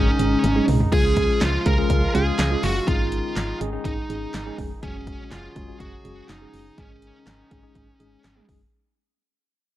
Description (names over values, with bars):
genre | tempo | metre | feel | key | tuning
synth-pop | 123 BPM | 4/4 | straight | unclear | A4 = 439 Hz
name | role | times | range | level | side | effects
high-gain lead guitar | melody | 0.0-8.4 s | Db4 to Bb4 | -26 LUFS | equal | distortion
tine electric piano | accompaniment | 0.0-8.6 s | Ab3 to Ab4 | -28 LUFS | right 1 dB | slow stereo tremolo
dark brass ensemble | sustained chords | 0.0-8.7 s | Db3 to Ab4 | -32 LUFS | right 1 dB | none
solid FM bass | bass | 0.0-8.7 s | F1 to Db2 | -25 LUFS | equal | none
punchy analog drum machine | drums | 0.2-8.6 s | crash cymbal, handclaps, hi-hat, kick drum, snare drum, toms | -25 LUFS | equal | none
room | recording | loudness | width
light reverb | dark, warm production | -19 LUFS | side -14 dB against mid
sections
0.0-8.7 A section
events
fade-out 0.0-8.7; drum fill 0.4-0.9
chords
0.0 Absus4; 0.9 Db; 2.9 Absus4; 4.8 Gbsus2; 6.8 Absus4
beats
0.44 | 0.93 1.41 1.90 2.39 | 2.88 3.37 3.85 4.34 | 4.83 5.32 5.80 6.29 | 6.78 7.27 7.75 8.24